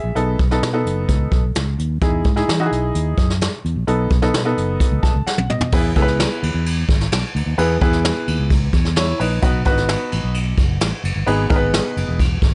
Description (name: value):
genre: uptempo 1960s-style soul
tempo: 130 BPM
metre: 4/4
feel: straight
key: E major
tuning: A4 = 439 Hz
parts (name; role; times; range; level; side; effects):
- clear baby grand piano; accompaniment; 0.0-12.2 s; B3 to A5; -23 LUFS; equal; none
- fingered electric bass; bass; 0.0-12.5 s; E1 to E3; -23 LUFS; equal; none
- vintage brush drum kit; drums; 0.2-12.5 s; crash cymbal, hi-hat, kick drum, ride cymbal, snare drum, toms; -22 LUFS; equal; none
room: studio ambience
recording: nothing above 10.8 kHz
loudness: -18 LUFS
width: mono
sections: 0.0-5.7 A section; 5.7-12.5 B section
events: grand piano fill 4.8-5.7; drum fill 5.3-5.7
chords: 0.2 B7; 2.0 Emaj7; 3.9 B7; 5.7 E; 9.4 B; 11.3 G#m